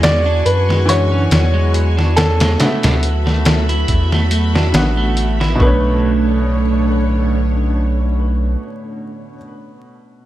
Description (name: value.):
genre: trip hop.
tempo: 70 BPM.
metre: 4/4.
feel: swing 55% on 16ths.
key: B minor.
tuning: A4 = 440 Hz.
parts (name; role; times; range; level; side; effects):
felt-muted upright piano; melody; 0.0-9.4 s; A4 to D5; -22 LUFS; equal; tape echo.
clear upright piano; accompaniment; 0.0-10.3 s; B2 to F#5; -24 LUFS; equal; tremolo, vintage 12-bit sampler grit, tape echo.
string machine, cellos; sustained chords; 0.0-9.3 s; A3 to C#6; -22 LUFS; right 1 dB; ensemble chorus.
electric guitar at the edge of break-up; arpeggios; 0.0-6.4 s; G#3 to E4; -23 LUFS; right 4 dB; ping-pong delay.
round analog bass; bass; 0.0-8.6 s; A1 to F#2; -16 LUFS; equal; tube saturation.
trip hop sampler-style drum kit; drums; 0.0-5.8 s; hi-hat, kick drum, snare drum; -17 LUFS; equal; none.
room: light reverb, digital ambience.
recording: vinyl crackle.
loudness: -13 LUFS.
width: side -14 dB against mid.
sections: 0.0-6.0 A section; 6.0-9.5 B section.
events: none.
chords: 0.0 E13; 2.6 D69; 5.6 Bm9.